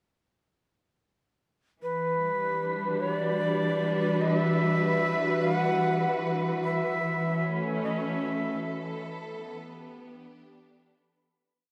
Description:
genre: ambient.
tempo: 50 BPM.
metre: 4/4.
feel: straight.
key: E dorian.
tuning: A4 = 440 Hz.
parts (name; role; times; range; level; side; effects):
breathy shakuhachi; melody; 1.8-9.0 s; B4 to F#5; -32 LUFS; equal; tape echo.
clear symphonic string section; sustained chords; 1.8-11.4 s; E3 to B4; -31 LUFS; equal; none.
wind-like tuned noise texture; texture; 2.1-11.4 s; B4 to B5; -41 LUFS; equal; built-in reverb.
room: wet huge ambient reverb, RT60 8.1 s.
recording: none.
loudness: -28 LUFS.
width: mono.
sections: 1.8-11.4 A section.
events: fade-out 6.6-11.4.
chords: 1.8 Em9; 6.6 F#m7/E; 9.0 A9sus4/E.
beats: | 1.83 3.03 4.23 5.43 | 6.63 7.83 9.03 10.23.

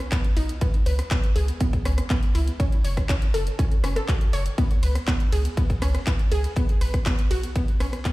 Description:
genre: progressive house.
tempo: 121 BPM.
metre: 4/4.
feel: straight.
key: unclear.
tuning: A4 = 440 Hz.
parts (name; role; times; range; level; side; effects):
round analog bass; bass; 0.0-8.0 s; F#1 to C#2; -23 LUFS; equal; sidechain pumping.
big-room dance drum kit; drums; 0.0-8.1 s; handclaps, hi-hat, ride cymbal, rim click; -33 LUFS; equal; overdrive, sidechain pumping on hats, sidechain pumping on toms, sidechain pumping on cymbals.
analog pluck; arpeggios; 0.1-8.1 s; B3 to C#5; -30 LUFS; equal; chorus, sidechain pumping, digital delay.
cloth-damped thuddy drum kit; drums; 0.1-8.1 s; ride cymbal, snare drum; -46 LUFS; left 2 dB; none.
electronic kick drum; drums; 0.1-8.1 s; none; -22 LUFS; equal; overdrive.
room: digital ambience.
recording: played on a big sound system in a bare room, stone room reverb.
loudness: -21 LUFS.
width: side -19 dB against mid.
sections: 0.0-8.1 A section.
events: none.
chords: 0.0 N.C.; 0.6 C#7(no3); 2.6 F#5; 4.6 C#5; 6.6 N.C..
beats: 0.12 | 0.61 1.11 1.61 2.10 | 2.60 3.09 3.59 4.08 | 4.58 5.08 5.57 6.07 | 6.56 7.06 7.56 8.05.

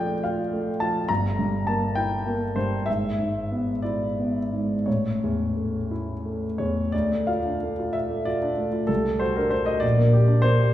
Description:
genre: classical, romantic character piece for solo piano.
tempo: 55-71 BPM (dotted quarters).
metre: 6/8.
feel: rubato.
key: D minor.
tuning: A4 = 440 Hz.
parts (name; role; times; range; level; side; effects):
warm concert grand piano; solo; 0.0-10.7 s; G1 to Bb5; -22 LUFS; equal; none.
room: wet recital hall reverb, RT60 1.8 s.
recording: heard from further back in the room.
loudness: -22 LUFS.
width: side -13 dB against mid.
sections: 0.0-6.9 A section; 6.9-10.7 B section.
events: none.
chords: 0.0 Dm/F; 1.1 Edim/G; 2.9 E7/G#; 4.9 A; 6.9 Dm; 8.9 D7/C; 9.8 Gm/Bb.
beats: 0.24 | 1.09 1.96 | 2.87 3.84 | 4.86 5.90 | 6.93 7.95 | 8.89 9.83.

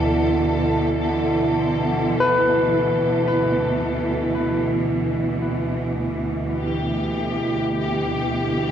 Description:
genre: ambient.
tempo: free time.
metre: none.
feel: none.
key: unclear.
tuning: A4 = 444 Hz.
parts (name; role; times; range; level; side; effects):
clear symphonic string section; sustained chords; 0.0-8.7 s; D2 to A4; -20 LUFS; right 1 dB; low-pass filter.
warm sub bass; bass; 0.0-2.1 s; D2; -29 LUFS; equal; tube saturation.
overtone-sweeping drone; drone; 0.0-8.7 s; D3; -31 LUFS; equal; chorus, built-in reverb.
barky tine electric piano; arpeggios; 2.2-8.7 s; B4; -24 LUFS; moving between left 2 dB and right 5 dB; auto-pan, tape echo.
room: wet concert hall reverb, RT60 2.3 s.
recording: worn, warbling old tape, cassette tape, warbly pitch drift.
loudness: -19 LUFS.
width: side -9 dB against mid.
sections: 0.0-2.2 A section; 2.2-8.7 B section.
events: none.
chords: 0.0 E5/D; 2.2 Em/D.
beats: free time.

